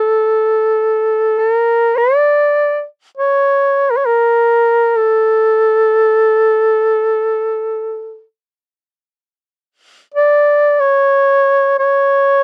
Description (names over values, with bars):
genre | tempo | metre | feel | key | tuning
caucasian folk, Caucasian lament | free time | none | none | unclear | A4 = 440 Hz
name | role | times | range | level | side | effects
mellow duduk | solo | 0.0-12.4 s | A4 to D5 | -13 LUFS | equal | none
room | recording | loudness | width
little or no reverb | dry, close 1970s-style studio recording | -13 LUFS | mono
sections
0.0-12.4 A section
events
none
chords
none